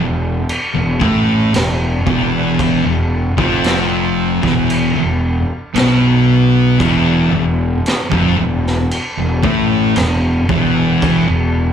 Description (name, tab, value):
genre	stoner and doom metal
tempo	57 BPM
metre	4/4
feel	straight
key	unclear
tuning	A4 = 441 Hz
part	thick fuzz guitar	riff	0.0-11.7 s	E2 to B3	-17 LUFS	left 9 dB	distortion, slapback echo
part	thick fuzz guitar	riff	0.0-11.7 s	E2 to B3	-17 LUFS	right 8 dB	distortion
part	fuzz fingered electric bass	bass	0.0-11.7 s	E1 to B1	-19 LUFS	equal	overdrive
part	raw garage drum kit	drums	0.5-11.3 s	crash cymbal, kick drum, snare drum	-20 LUFS	equal	none
room	small room ambience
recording	live gig heard through the venue's PA, club reverb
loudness	-12 LUFS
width	side -8 dB against mid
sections	0.0-11.7 A section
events	none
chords	0.0 E5